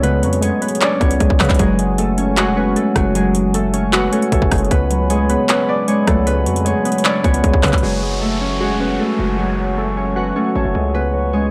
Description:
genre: hip hop, trap.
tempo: 154 BPM.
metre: 4/4.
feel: half-time.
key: F# minor.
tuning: A4 = 440 Hz.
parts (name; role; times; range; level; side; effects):
Celtic harp; melody; 0.0-11.5 s; F#3 to D5; -22 LUFS; equal; analog delay.
glassy digital keys; accompaniment; 0.0-11.5 s; C#3 to F#4; -22 LUFS; equal; chorus.
distorted 808-style bass; bass; 0.0-11.5 s; E#1 to C#3; -23 LUFS; equal; distortion.
trap drum kit; drums; 0.0-7.8 s; handclaps, hi-hat, kick drum, rim click; -20 LUFS; equal; overdrive.
glass harmonica; sustained chords; 1.6-11.5 s; F#4 to C#6; -29 LUFS; equal; none.
downlifter; sound effects; 7.8-10.9 s; none; -31 LUFS; equal; none.
room: little or no reverb.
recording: dry, gritty hardware recording.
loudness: -17 LUFS.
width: mono.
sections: 0.0-7.8 A section; 7.8-11.5 B section.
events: none.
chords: 0.0 C#7sus4; 1.6 F#madd9; 4.7 C#7sus4; 7.8 F#madd9; 10.9 C#7sus4.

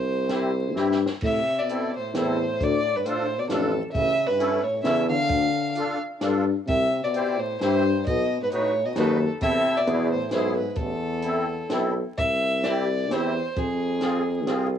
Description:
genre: alpine folk, alpine dance band.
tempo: 132 BPM.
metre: 3/4.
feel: swing 54% on 8ths, rubato.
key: A minor.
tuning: A4 = 440 Hz.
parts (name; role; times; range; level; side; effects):
dark fiddle; melody; 0.0-14.5 s; Ab4 to F5; -26 LUFS; equal; cassette tape, plate reverb.
clear tuba; bass; 0.0-14.8 s; A1 to A2; -25 LUFS; left 1 dB; none.
musette accordion; accompaniment; 0.3-14.7 s; B3 to C5; -30 LUFS; left 1 dB; cassette tape, plate reverb.
compact cocktail drum kit; drums; 0.3-14.6 s; crash cymbal, hi-hat, kick drum, snare drum; -32 LUFS; equal; vintage 12-bit sampler grit, cassette tape.
warm euphonium; second line; 1.3-11.7 s; E2 to D3; -30 LUFS; right 1 dB; cassette tape, plate reverb.
room: moderate booth ambience, RT60 0.2 s.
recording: home recording on cassette, vinyl crackle.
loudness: -22 LUFS.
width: side -9 dB against mid.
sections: 0.0-1.2 A section; 1.2-12.2 B section; 12.2-14.8 A section.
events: drum fill 0.7-1.2.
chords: 0.0 C; 1.2 Am; 2.6 Dm; 3.9 A; 5.3 Dm; 6.7 C; 8.1 B; 9.4 Am/E; 9.9 E; 10.8 Am; 12.2 C; 13.6 Fm.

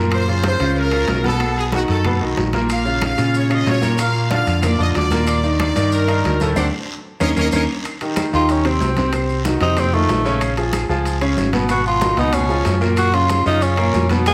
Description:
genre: latin, salsa.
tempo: 187 BPM.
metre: 4/4.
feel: straight.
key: Bb minor.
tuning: A4 = 439 Hz.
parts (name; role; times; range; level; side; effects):
bright grand piano; accompaniment; 0.0-14.3 s; A2 to Db5; -23 LUFS; equal; none.
fingered electric bass; bass; 0.0-14.3 s; Ab1 to Bb2; -23 LUFS; equal; none.
bright horn section; melody; 0.1-7.6 s; F#4 to F#5; -25 LUFS; equal; none.
claves; percussion; 0.1-14.3 s; none; -36 LUFS; equal; none.
congas; percussion; 0.1-14.3 s; none; -30 LUFS; equal; none.
guiro; percussion; 0.1-14.3 s; none; -36 LUFS; equal; none.
timbales; percussion; 0.1-14.3 s; none; -31 LUFS; equal; none.
maracas; percussion; 2.7-14.3 s; none; -39 LUFS; equal; none.
growling tenor saxophone; melody; 8.3-14.3 s; A3 to Ab4; -22 LUFS; equal; none.
room: wet large studio reverb, RT60 1.2 s.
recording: none.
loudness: -18 LUFS.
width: mono.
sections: 0.0-7.8 A section; 7.8-14.3 B section.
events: band accent 6.6-7.8; drum fill 7.2-7.8; tenor saxophone solo 7.8-14.3.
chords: 0.1 Gbmaj7; 1.4 B7; 2.7 Bbm; 4.0 Bb; 5.3 Ebmaj7; 6.6 D7(no3); 7.2 Eb5; 7.8 Cm; 9.1 Cdim; 9.8 F7; 10.4 Bbm7; 11.7 Abm7; 12.3 Db7; 13.0 Gbmaj7.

